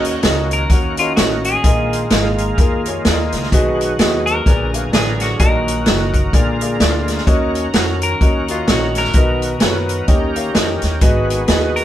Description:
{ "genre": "uptempo gospel", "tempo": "128 BPM", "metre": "4/4", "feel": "swing 59% on 8ths", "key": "Eb minor", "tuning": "A4 = 440 Hz", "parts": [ { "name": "clear concert grand piano", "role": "accompaniment", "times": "0.0-11.8 s", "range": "Ab2 to Gb5", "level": "-20 LUFS", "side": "left 1 dB", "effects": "none" }, { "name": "bright tonewheel organ", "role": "sustained chords", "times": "0.0-11.8 s", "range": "D3 to Bb4", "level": "-24 LUFS", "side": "right 1 dB", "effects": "slow rotary speaker, overdrive, chorus vibrato" }, { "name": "upright bass", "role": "bass", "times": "0.0-11.8 s", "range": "Gb1 to F#2", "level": "-22 LUFS", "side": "equal", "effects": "none" }, { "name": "swinging big-band drum kit", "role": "drums", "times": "0.0-11.8 s", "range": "hi-hat, kick drum, snare drum", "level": "-16 LUFS", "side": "equal", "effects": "none" }, { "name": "clean electric guitar", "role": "melody", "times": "0.5-11.8 s", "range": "F4 to Bb4", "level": "-21 LUFS", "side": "left 2 dB", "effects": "none" } ], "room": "moderate studio reverb, RT60 0.7 s", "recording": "band playing live in one room", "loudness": "-13 LUFS", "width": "side -12 dB against mid", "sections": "0.0-11.8 A section", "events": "none", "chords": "0.0 Ebm7; 1.6 Bb7sus4; 3.5 B6; 4.5 Bb7b9; 5.4 Ebm/Bb; 6.3 Bb7; 7.3 Ebm7; 9.1 Bmaj7; 10.1 Eb7; 11.0 Abm7" }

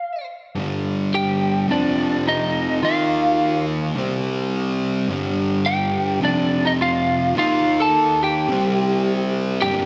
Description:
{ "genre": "rock", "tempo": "106 BPM", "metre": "4/4", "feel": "straight", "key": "G minor", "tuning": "A4 = 438 Hz", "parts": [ { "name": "lightly driven lead guitar", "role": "melody", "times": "0.0-9.9 s", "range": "D4 to A5", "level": "-23 LUFS", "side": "equal", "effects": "slapback echo" }, { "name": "fuzz guitar", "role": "riff", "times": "0.6-9.9 s", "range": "F2 to Eb4", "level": "-23 LUFS", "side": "equal", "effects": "distortion" } ], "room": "wet scoring stage reverb, RT60 1.6 s", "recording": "big arena sound", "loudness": "-20 LUFS", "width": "mono", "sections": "0.6-9.6 A section", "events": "none", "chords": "0.0 N.C.; 0.6 G5; 1.7 F5; 2.8 Ebsus2; 4.0 C5; 5.1 G5; 6.2 F5; 7.4 Ebadd9; 8.5 C5" }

